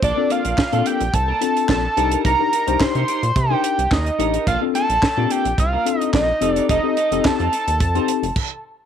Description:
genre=early-eighties boogie funk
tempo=108 BPM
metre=4/4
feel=straight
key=Bb major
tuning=A4 = 440 Hz
part: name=fat analog lead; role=melody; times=0.0-8.6 s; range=D5 to C6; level=-20 LUFS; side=right 1 dB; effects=slapback echo
part: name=semi-hollow electric guitar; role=riff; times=0.0-8.3 s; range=Bb3 to C5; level=-29 LUFS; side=right 12 dB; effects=analog chorus
part: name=rubbery square bass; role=bass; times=0.0-8.3 s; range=F1 to C3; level=-23 LUFS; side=right 1 dB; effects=none
part: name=tight funk drum kit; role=drums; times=0.0-8.5 s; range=crash cymbal, handclaps, hi-hat, kick drum, snare drum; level=-22 LUFS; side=right 2 dB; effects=none
part: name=mellow tine electric piano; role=accompaniment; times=0.2-8.2 s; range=C4 to C5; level=-23 LUFS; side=left 15 dB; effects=none
room=light reverb, small room ambience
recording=1960s-style stereo with parts hard left and right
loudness=-16 LUFS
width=side -8 dB against mid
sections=0.0-8.9 A section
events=stop 8.4-8.9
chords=0.0 Bbmaj7; 2.0 Cm7; 4.5 Bbmaj7; 6.4 F7

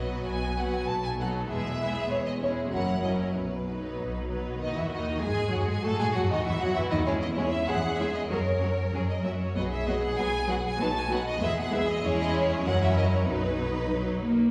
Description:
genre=quick classical-period movement for string orchestra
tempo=97 BPM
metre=2/4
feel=straight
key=B major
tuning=A4 = 440 Hz
part: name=rich studio violin section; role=melody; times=0.0-13.9 s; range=B4 to A5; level=-34 LUFS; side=equal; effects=none
part: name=rich studio violin section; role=second line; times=0.0-14.4 s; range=D#4 to B4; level=-37 LUFS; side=equal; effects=none
part: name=rich studio viola section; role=accompaniment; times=0.0-14.5 s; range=D#3 to C#4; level=-34 LUFS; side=equal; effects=none
part: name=rich studio cello section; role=bass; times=0.0-14.2 s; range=E2 to A#4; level=-36 LUFS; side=equal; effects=none
part: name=rich studio double bass section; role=bass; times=0.0-14.4 s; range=E1 to A2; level=-34 LUFS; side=equal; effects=none
room=wet scoring stage reverb, RT60 2.0 s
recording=heard from further back in the room, studio reverb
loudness=-28 LUFS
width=mono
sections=0.0-4.6 A section; 4.6-14.5 B section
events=none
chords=0.0 B5; 1.5 E; 2.1 C#m/E; 2.7 F#7; 3.3 B; 4.6 D#madd11; 5.9 F#m69; 6.5 Esus2; 7.1 C#m/E; 8.3 F#; 9.6 B5; 10.8 B; 11.4 E; 12.0 C#m/E; 12.6 F#7; 13.3 B

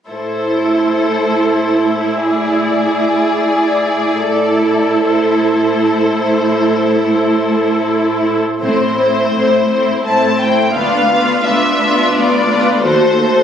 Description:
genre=classical, slow romantic movement for string orchestra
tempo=75-89 BPM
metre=3/4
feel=rubato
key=A minor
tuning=A4 = 440 Hz
part: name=warm symphonic violin section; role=melody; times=0.1-13.4 s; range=C5 to A5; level=-18 LUFS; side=left 2 dB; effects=none
part: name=warm symphonic violin section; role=second line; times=0.1-13.4 s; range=E4 to C5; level=-17 LUFS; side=left 2 dB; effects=none
part: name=warm symphonic viola section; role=accompaniment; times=0.1-13.4 s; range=A3 to F#4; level=-15 LUFS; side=right 2 dB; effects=none
part: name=rich symphonic cello section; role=bass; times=0.1-13.4 s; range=D2 to A2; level=-21 LUFS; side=right 1 dB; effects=none
part: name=rich studio double bass section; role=bass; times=8.6-13.4 s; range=A1 to D#2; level=-29 LUFS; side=right 2 dB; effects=none
room=moderate scoring stage reverb, RT60 1.8 s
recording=recorded on a phone in the room, studio reverb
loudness=-12 LUFS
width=side -8 dB against mid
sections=0.1-8.6 A section; 8.6-13.4 B section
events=none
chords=0.1 Am; 10.7 Bdim/D; 12.8 D#dim7

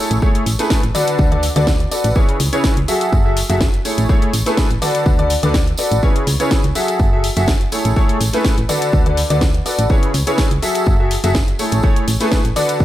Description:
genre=piano house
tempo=124 BPM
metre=4/4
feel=swing 53% on 16ths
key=F# minor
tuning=A4 = 440 Hz
part: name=bright concert grand piano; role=riff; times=0.0-12.8 s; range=C#3 to E5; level=-18 LUFS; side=left 1 dB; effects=analog chorus, sidechain pumping, tape echo
part: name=solid FM bass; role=bass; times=0.1-12.8 s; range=F#1 to D2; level=-19 LUFS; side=equal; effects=sidechain pumping
part: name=house drum kit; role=drums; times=0.1-12.8 s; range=hi-hat, snare drum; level=-23 LUFS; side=left 1 dB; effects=none
part: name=tambourine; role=percussion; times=0.1-12.8 s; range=none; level=-29 LUFS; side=right 3 dB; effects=none
part: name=electronic kick drum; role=drums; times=0.2-12.8 s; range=none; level=-16 LUFS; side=equal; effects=none
room=light reverb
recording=none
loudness=-13 LUFS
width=side -14 dB against mid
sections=0.0-12.8 A section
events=none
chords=0.0 Amaj7; 0.9 D6; 2.2 C#m7; 2.9 F#m9; 3.9 Amaj7; 4.8 D6; 6.0 C#m7; 6.8 F#m9; 7.7 Amaj7; 8.7 D6; 9.9 C#m7; 10.6 F#m9; 11.6 Amaj7

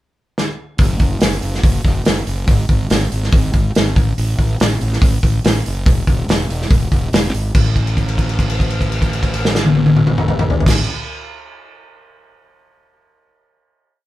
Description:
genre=indie rock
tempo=142 BPM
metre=4/4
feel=straight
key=unclear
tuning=A4 = 440 Hz
part: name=loose indie drum kit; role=drums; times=0.4-10.8 s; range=crash cymbal, hi-hat, kick drum, snare drum, toms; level=-15 LUFS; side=equal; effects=none
part: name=fuzz fingered electric bass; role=bass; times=0.8-10.8 s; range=E1 to A1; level=-19 LUFS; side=equal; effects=overdrive
room=moderate studio reverb, RT60 0.5 s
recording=band playing live in one room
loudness=-13 LUFS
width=side -15 dB against mid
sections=0.0-0.8 pickup bar; 0.8-7.5 pre-chorus; 7.5-10.9 final note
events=drum fill 0.4-0.8; held note 7.5-10.7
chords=none

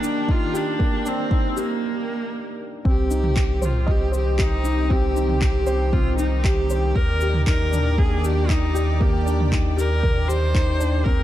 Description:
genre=piano and strings electronica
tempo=117 BPM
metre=4/4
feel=straight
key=unclear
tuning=A4 = 440 Hz
part: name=bright viola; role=melody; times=0.0-11.2 s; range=Bb3 to C5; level=-26 LUFS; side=right 1 dB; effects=none
part: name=lush unison pad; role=sustained chords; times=0.0-11.2 s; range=C3 to G5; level=-31 LUFS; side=equal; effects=chorus, sidechain pumping
part: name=felt-muted upright piano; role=riff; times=0.0-11.2 s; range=Bb3 to Eb5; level=-27 LUFS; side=left 1 dB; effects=none
part: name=deep house drum kit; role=drums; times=0.0-10.9 s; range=handclaps, shaker, toms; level=-30 LUFS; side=right 1 dB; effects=studio reverb
part: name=electronic kick drum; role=drums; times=0.3-11.2 s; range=none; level=-21 LUFS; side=equal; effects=studio reverb
part: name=warm sub bass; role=bass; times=2.9-11.2 s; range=C2 to Eb2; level=-22 LUFS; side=equal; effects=sidechain pumping
room=light reverb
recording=dark, warm production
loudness=-18 LUFS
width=side -13 dB against mid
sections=0.0-2.9 A section; 2.9-11.2 B section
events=build-up 0.0-2.9; break 1.8-2.9; drop 2.9-11.2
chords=0.0 Ebmaj7; 2.9 Cm; 7.0 Ebmaj7

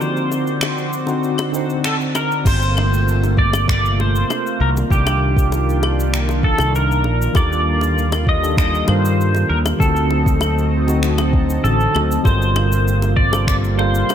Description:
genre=sunset chillout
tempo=98 BPM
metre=4/4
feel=straight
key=G minor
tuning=A4 = 440 Hz
part: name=pedal steel guitar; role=melody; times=0.0-14.1 s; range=G4 to Eb5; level=-22 LUFS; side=equal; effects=analog chorus, ping-pong delay
part: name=bright tine electric piano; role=accompaniment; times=0.0-2.5, 7.3-14.1 s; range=D3 to F5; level=-23 LUFS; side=moving between left 4 dB and right 2 dB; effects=medium stereo tremolo, auto-pan, ping-pong delay
part: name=lush unison pad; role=sustained chords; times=0.0-14.1 s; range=C3 to Eb5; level=-24 LUFS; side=equal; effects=chorus
part: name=smooth R&B drum kit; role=drums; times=0.0-14.1 s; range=cabasa, claves, crash cymbal, finger snaps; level=-26 LUFS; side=left 2 dB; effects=gated reverb
part: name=bongos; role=percussion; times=0.3-14.1 s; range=none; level=-29 LUFS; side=left 5 dB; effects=none
part: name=mellow fretless electric bass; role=bass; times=2.5-14.0 s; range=G1 to G2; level=-18 LUFS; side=equal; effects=wide subtle chorus
part: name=electronic kick drum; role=drums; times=2.5-13.6 s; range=none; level=-17 LUFS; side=equal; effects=none
room=light reverb, digital ambience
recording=bright 1980s-style digital production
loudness=-15 LUFS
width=side -9 dB against mid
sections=0.0-2.5 A section; 2.5-14.1 A section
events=break 0.0-2.5; band accent 1.8-2.2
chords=0.0 D7b9; 2.5 Gm11; 4.6 Cm11; 7.4 Ebmaj9#11; 9.8 D7b9; 12.3 Gm11

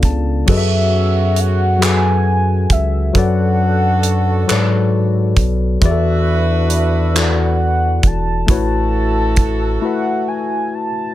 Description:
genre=slow six-eight R&B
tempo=45 BPM (dotted quarters)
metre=6/8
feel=straight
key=F# minor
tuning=A4 = 441 Hz
part: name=barky tine electric piano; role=accompaniment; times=0.0-11.1 s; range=C#3 to A5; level=-19 LUFS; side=left 6 dB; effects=overdrive
part: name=round analog bass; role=bass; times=0.0-9.8 s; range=E1 to G#2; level=-16 LUFS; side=right 1 dB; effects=none
part: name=damped 70s drum kit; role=drums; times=0.0-9.6 s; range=crash cymbal, handclaps, hi-hat, kick drum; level=-16 LUFS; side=right 1 dB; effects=none
part: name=mellow horn-like synth lead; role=melody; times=0.5-11.1 s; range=E5 to A5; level=-21 LUFS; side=right 1 dB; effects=chorus, plate reverb
part: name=warm horn section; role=stabs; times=0.5-10.7 s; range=B3 to B4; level=-26 LUFS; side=right 4 dB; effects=digital delay
room=little or no reverb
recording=none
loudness=-13 LUFS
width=side -14 dB against mid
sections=0.5-11.1 A section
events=tine electric piano fill 0.0-0.5; break 9.8-11.1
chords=0.5 F#m11; 3.1 Bm9/F#; 5.8 E9sus4; 8.5 A69

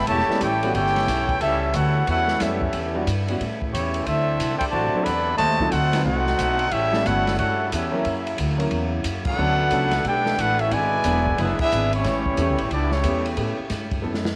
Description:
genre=jazz, big band swing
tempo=180 BPM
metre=4/4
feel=swing 63% on 8ths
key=A major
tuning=A4 = 440 Hz
part: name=mellow trumpet section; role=melody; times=0.0-13.3 s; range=A3 to B5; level=-25 LUFS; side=equal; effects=none
part: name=warm trombone section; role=second line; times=0.0-13.3 s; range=B2 to G4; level=-32 LUFS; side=equal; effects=none
part: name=clear trombone section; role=sustained chords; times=0.0-14.4 s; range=C#3 to A4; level=-36 LUFS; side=equal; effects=none
part: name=upright bass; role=bass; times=0.0-14.4 s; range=E1 to A2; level=-28 LUFS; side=equal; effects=none
part: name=open jazz drum kit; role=drums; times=0.1-14.3 s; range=crash cymbal, hi-hat, kick drum, ride cymbal, snare drum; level=-32 LUFS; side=equal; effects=none
part: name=warm baby grand piano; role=accompaniment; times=0.3-14.2 s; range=F#3 to B4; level=-31 LUFS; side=equal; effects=none
room=light reverb, small room ambience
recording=none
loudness=-22 LUFS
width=mono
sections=0.0-14.4 A section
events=band accent 9.2, 11.6; drum fill 14.0-14.4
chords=0.0 Em7; 3.4 A7; 4.1 D7; 5.4 D#dim7; 6.7 A7; 8.1 F#7; 9.4 Bm7; 10.7 E7; 12.0 A7

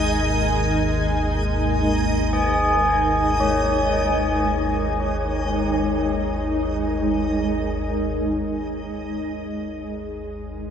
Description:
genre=dark ambient drone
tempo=free time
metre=none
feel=none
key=unclear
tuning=A4 = 440 Hz
part: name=granular cloud pad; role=sustained chords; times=0.0-10.7 s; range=G#3 to G#5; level=-23 LUFS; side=equal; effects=built-in reverb, wide subtle chorus, shimmer reverb
part: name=deep rumbling drone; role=drone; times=0.0-10.7 s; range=G#1 to D#2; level=-26 LUFS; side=equal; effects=built-in reverb, wide subtle chorus
part: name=backwards swelling texture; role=texture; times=0.0-8.5 s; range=D#5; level=-31 LUFS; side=equal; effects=built-in reverb, wide subtle chorus, shimmer reverb
part: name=tubular bells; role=arpeggios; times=2.3-9.8 s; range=C#4 to G#4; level=-24 LUFS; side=left 2 dB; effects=ping-pong delay, shimmer reverb
room=wet lush hall reverb, RT60 2.9 s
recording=dreamy mix soaked in reverb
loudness=-20 LUFS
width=side -8 dB against mid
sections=0.0-8.5 A section; 8.5-10.7 B section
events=none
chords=0.0 G#sus2

